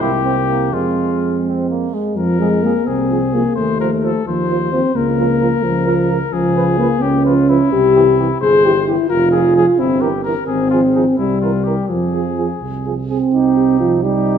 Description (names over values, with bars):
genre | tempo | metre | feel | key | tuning
classical, brass quintet | 86 BPM (dotted quarters) | 6/8 | straight | F minor | A4 = 440 Hz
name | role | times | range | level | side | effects
warm trumpet | melody | 0.0-14.4 s | Eb4 to C5 | -23 LUFS | left 9 dB | none
mellow flugelhorn | second line | 0.0-14.4 s | Ab3 to C5 | -25 LUFS | right 7 dB | none
dark French horn | accompaniment | 0.0-14.4 s | F3 to Ab4 | -16 LUFS | left 2 dB | none
warm euphonium | accompaniment | 0.0-14.4 s | E3 to C4 | -21 LUFS | right 5 dB | none
mellow tuba | bass | 0.0-14.4 s | F1 to F2 | -21 LUFS | right 5 dB | none
room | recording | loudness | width
wet recital hall reverb, RT60 1.4 s | minimal, uncompressed stereo recording | -13 LUFS | side -8 dB against mid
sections
0.0-2.2 A section; 2.2-13.3 A section; 13.3-14.4 B section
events
none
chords
0.0 C7; 0.7 Fm; 3.6 F7/Eb; 5.0 Bbm/Db; 7.7 C; 9.1 Fm; 9.8 Gm6; 10.5 Fm/Ab; 11.2 C7; 11.9 Fm; 13.3 Cm